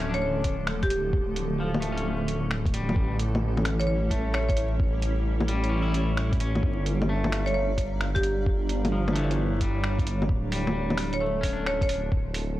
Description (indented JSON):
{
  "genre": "future garage",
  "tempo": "131 BPM",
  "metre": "4/4",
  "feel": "swing 67% on 16ths",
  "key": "D harmonic minor",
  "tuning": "A4 = 440 Hz",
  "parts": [
    { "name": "electric guitar at the edge of break-up", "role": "accompaniment", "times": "0.0-12.1 s", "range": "E3 to E4", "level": "-34 LUFS", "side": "left 2 dB", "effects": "sidechain pumping, analog delay" },
    { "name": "granular cloud pad", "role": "sustained chords", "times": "0.0-12.6 s", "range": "D3 to D6", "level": "-33 LUFS", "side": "right 1 dB", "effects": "built-in reverb, sidechain pumping" },
    { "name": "dark detuned saw bass", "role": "bass", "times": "0.0-12.6 s", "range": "D1 to A1", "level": "-28 LUFS", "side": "equal", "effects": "sidechain pumping" },
    { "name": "marimba with medium hard mallets", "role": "melody", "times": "0.1-4.5, 7.5-11.9 s", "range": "G4 to C#5", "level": "-31 LUFS", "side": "right 1 dB", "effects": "analog delay" },
    { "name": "lo-fi sampler-style drum kit", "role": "drums", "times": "0.1-12.5 s", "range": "bongos, finger snaps, hi-hat", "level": "-31 LUFS", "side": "left 1 dB", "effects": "none" },
    { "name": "electronic kick drum", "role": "drums", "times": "0.4-12.2 s", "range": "none", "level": "-26 LUFS", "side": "equal", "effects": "none" }
  ],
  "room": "digital ambience",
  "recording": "dry, gritty hardware recording, vinyl crackle",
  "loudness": "-24 LUFS",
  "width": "side -15 dB against mid",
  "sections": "0.0-12.6 A section",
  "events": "none",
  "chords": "0.0 Dm; 3.0 A7; 6.6 Gm7; 10.3 Dm",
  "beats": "0.22 0.68 | 1.13 1.59 2.05 2.51 | 2.96 3.42 3.88 4.34 | 4.80 5.25 5.71 6.17 | 6.63 7.09 7.54 8.00 | 8.46 8.92 9.38 9.84 | 10.29 10.75 11.21 11.67 | 12.12 12.58"
}